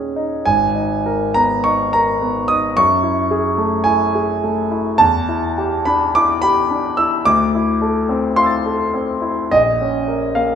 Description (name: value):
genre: classical, impressionist solo piano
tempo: 53 BPM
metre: 4/4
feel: rubato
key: unclear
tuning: A4 = 440 Hz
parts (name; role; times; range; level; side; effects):
- warm grand piano; solo; 0.0-10.6 s; G#1 to A6; -14 LUFS; equal; none
room: wet recital hall reverb, RT60 1.4 s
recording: minimal, uncompressed stereo recording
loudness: -14 LUFS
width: side -8 dB against mid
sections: 0.0-10.6 A section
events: none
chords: 0.4 G#madd9; 2.7 F#m9; 5.0 Em7; 7.3 Dm9; 9.5 Bbm